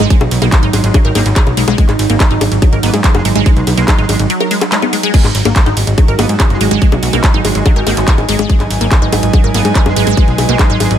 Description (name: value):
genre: psychedelic trance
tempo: 143 BPM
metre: 4/4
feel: straight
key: G# minor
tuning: A4 = 440 Hz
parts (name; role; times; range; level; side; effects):
- evolving wavetable pad; sustained chords; 0.0-11.0 s; F#3 to B4; -19 LUFS; right 4 dB; chorus, built-in reverb, sidechain pumping
- wide unison pluck; riff; 0.0-10.8 s; F#3 to A#4; -18 LUFS; moving between left 8 dB and right 8 dB; auto-pan, sidechain pumping, dub echo
- plucky analog bass; bass; 0.0-11.0 s; F#1 to G#2; -15 LUFS; equal; none
- drum and bass drum kit; drums; 0.0-11.0 s; bongos, crash cymbal, handclaps, hi-hat, ride cymbal; -17 LUFS; left 2 dB; none
- electronic kick drum; drums; 0.1-10.7 s; none; -10 LUFS; equal; none
- metallic wobble bass; second line; 0.7-10.9 s; D#3 to B3; -26 LUFS; right 1 dB; chorus, sidechain pumping, high-pass filter, ping-pong delay
- airy breathy pad; texture; 5.1-11.0 s; G#3 to G#5; -22 LUFS; left 1 dB; chorus, sidechain pumping
room: little or no reverb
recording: none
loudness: -9 LUFS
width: side -10 dB against mid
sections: 0.0-5.1 A section; 5.1-11.0 A section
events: drop 0.0-5.1, 5.1-11.0; break 4.3-5.1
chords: 0.0 G#5